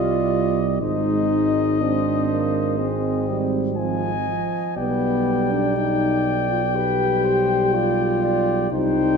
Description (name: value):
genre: classical, brass quintet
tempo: 61 BPM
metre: 4/4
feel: straight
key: unclear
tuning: A4 = 439 Hz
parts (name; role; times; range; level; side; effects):
- mellow trumpet; melody; 0.0-9.2 s; Eb5 to Ab5; -27 LUFS; left 9 dB; none
- mellow flugelhorn; second line; 0.0-9.2 s; B4 to Eb5; -28 LUFS; right 8 dB; none
- mellow French horn; accompaniment; 0.0-9.2 s; B3 to G4; -22 LUFS; left 3 dB; none
- mellow trombone; accompaniment; 0.0-9.2 s; F3 to C4; -28 LUFS; right 6 dB; none
- dark tuba; bass; 0.0-9.2 s; Ab1 to C2; -25 LUFS; right 3 dB; none
room: wet concert hall reverb, RT60 2.1 s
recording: minimal, uncompressed stereo recording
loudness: -19 LUFS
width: side -5 dB against mid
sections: 0.0-9.2 A section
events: none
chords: 0.0 Cm; 0.8 Ab; 4.8 G/B